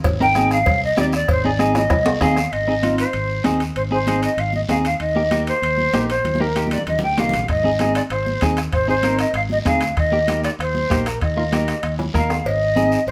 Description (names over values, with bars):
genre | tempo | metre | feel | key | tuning
latin, cumbia | 193 BPM | 4/4 | straight | unclear | A4 = 440 Hz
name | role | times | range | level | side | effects
fingered electric bass | bass | 0.0-13.1 s | Ab1 to Eb2 | -27 LUFS | equal | none
bombo | percussion | 0.0-2.5, 7.5-12.5 s | none | -26 LUFS | equal | none
cowbell and timbales | percussion | 0.0-13.1 s | none | -30 LUFS | equal | none
guiro | percussion | 0.0-13.1 s | none | -37 LUFS | equal | none
congas | percussion | 0.1-12.9 s | none | -31 LUFS | equal | none
breathy jazz flute | melody | 0.2-13.1 s | Bb4 to G5 | -23 LUFS | equal | none
clean electric guitar | accompaniment | 0.2-13.0 s | Bb3 to Bb4 | -24 LUFS | equal | none
room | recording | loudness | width
moderate large studio reverb, RT60 1.0 s | band playing live in one room | -19 LUFS | mono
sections
0.0-2.5 A section; 2.5-12.5 B section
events
drum fill 1.7-2.5, 6.2-7.5, 12.0-12.5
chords
0.0 Ab; 5.0 Eb; 7.5 Ab; 10.0 Eb; 12.5 Ab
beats
| 0.05 0.35 0.66 0.97 | 1.28 1.59 1.90 2.21 | 2.52 2.83 3.14 3.45 | 3.76 4.07 4.38 4.69 | 5.00 5.32 5.62 5.93 | 6.25 6.56 6.87 7.18 | 7.49 7.80 8.11 8.42 | 8.73 9.04 9.35 9.66 | 9.97 10.28 10.59 10.90 | 11.21 11.52 11.84 12.14 | 12.46 12.77 13.08